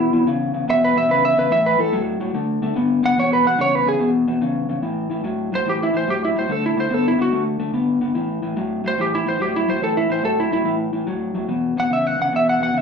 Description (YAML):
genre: blues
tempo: 144 BPM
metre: 4/4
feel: swing 67% on 8ths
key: A mixolydian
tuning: A4 = 440 Hz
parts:
  - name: lightly driven lead guitar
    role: melody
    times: 0.0-12.8 s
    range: E4 to F#5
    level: -18 LUFS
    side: right 2 dB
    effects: slapback echo
  - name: electric guitar through a small old amp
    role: riff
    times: 0.0-12.8 s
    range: E2 to B3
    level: -21 LUFS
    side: left 2 dB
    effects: slapback echo
room: moderate club reverb, RT60 0.5 s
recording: live gig heard through the venue's PA, club ambience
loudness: -17 LUFS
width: side -6 dB against mid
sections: 0.0-4.8 A section; 4.8-12.8 B section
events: lead electric guitar solo 0.0-4.8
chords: 0.0 E5; 1.5 A5; 2.3 D5; 3.2 E5; 4.8 A5; 6.5 D5; 8.2 A5; 11.5 E5